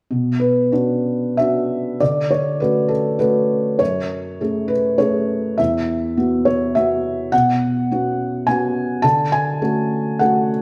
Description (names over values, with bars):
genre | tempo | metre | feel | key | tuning
neoclassical minimalist piano | 88-109 BPM | 3/4 | rubato | B dorian | A4 = 441 Hz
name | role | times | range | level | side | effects
felt-muted upright piano | solo | 0.1-10.6 s | E2 to A5 | -19 LUFS | equal | none
room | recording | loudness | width
wet stone room reverb, RT60 1.3 s | band playing live in one room | -19 LUFS | mono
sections
0.1-10.6 A section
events
none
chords
0.1 Bmadd9; 2.0 Dmaj7; 3.8 F#madd9; 5.6 Esus2; 7.3 Bsus2; 9.0 Dmaj7